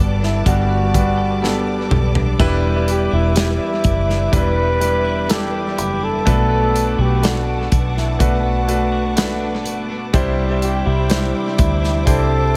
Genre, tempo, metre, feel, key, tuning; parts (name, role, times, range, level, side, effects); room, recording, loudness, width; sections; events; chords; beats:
pop ballad; 62 BPM; 4/4; straight; E minor; A4 = 440 Hz
bright concert grand piano; accompaniment; 0.0-12.6 s; G2 to C5; -25 LUFS; equal; tape echo
warm studio string section; sustained chords; 0.0-12.6 s; B4 to D6; -32 LUFS; equal
twelve-string electric guitar; arpeggios; 0.0-12.6 s; E2 to A4; -29 LUFS; equal; spring reverb, tape echo
vintage muted fingered electric bass; bass; 0.0-12.6 s; E1 to D2; -22 LUFS; equal
mellow flugelhorn; melody; 0.2-12.6 s; E4 to B4; -25 LUFS; equal; tape echo
modern studio drum kit; drums; 0.2-12.3 s; hi-hat, kick drum, snare drum, splash cymbal, toms; -22 LUFS; equal; tape echo
light reverb, small room ambience; echo-heavy mix; -17 LUFS; mono
0.0-12.6 A section
drum fill 1.4-2.4
0.0 Gadd9; 2.4 Em7; 6.3 Bm7; 10.1 Cadd9
0.46 1.43 | 2.40 3.36 4.33 5.30 | 6.27 7.24 8.20 9.17 | 10.14 11.11 12.07